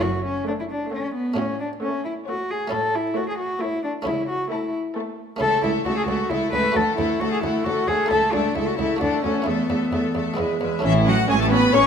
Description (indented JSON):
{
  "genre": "classical, baroque-style concerto movement with solo episodes",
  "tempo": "133 BPM",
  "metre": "3/4",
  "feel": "straight",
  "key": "F# minor, A major from 5.4 s",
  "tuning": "A4 = 440 Hz",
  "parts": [
    { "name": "dark cello", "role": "melody", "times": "0.0-11.9 s", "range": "E3 to B4", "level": "-23 LUFS", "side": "left 1 dB", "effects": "none" },
    { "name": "buff-stop harpsichord", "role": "accompaniment", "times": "0.0-11.9 s", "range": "C#2 to F#4", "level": "-30 LUFS", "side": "right 1 dB", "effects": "none" },
    { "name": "rich chamber cello section", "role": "bass", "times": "0.0-11.9 s", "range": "C#2 to A2", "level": "-29 LUFS", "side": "right 3 dB", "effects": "none" },
    { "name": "warm chamber violin section", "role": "melody", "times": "0.5-11.9 s", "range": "E5 to C#6", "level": "-30 LUFS", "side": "left 2 dB", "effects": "none" },
    { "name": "rich chamber violin section", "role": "second line", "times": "0.5-11.9 s", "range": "E4 to C#5", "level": "-28 LUFS", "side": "left 4 dB", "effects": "none" },
    { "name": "dark chamber viola section", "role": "accompaniment", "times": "0.5-11.8 s", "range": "G#3 to C#4", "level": "-27 LUFS", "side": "equal", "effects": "none" },
    { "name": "warm studio double bass section", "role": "bass", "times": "10.8-11.9 s", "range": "A1", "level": "-25 LUFS", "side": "right 5 dB", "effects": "none" }
  ],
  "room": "wet recital hall reverb, RT60 1.4 s",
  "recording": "minimal, uncompressed stereo recording",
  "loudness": "-20 LUFS",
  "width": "side -7 dB against mid",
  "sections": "0.0-10.8 A section; 10.8-11.9 B section",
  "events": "none",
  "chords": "0.0 F#m; 1.4 F#m/A; 2.7 A; 4.1 A/C#; 6.8 D; 8.1 A/C#; 9.0 D; 9.5 Esus4; 10.4 E; 10.8 A",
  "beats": "| 0.03 0.48 0.93 | 1.38 1.83 2.28 | 2.73 3.17 3.62 | 4.07 4.52 4.96 | 5.41 5.86 6.31 | 6.76 7.21 7.66 | 8.11 8.56 9.02 | 9.47 9.93 10.38 | 10.84 11.29 11.74"
}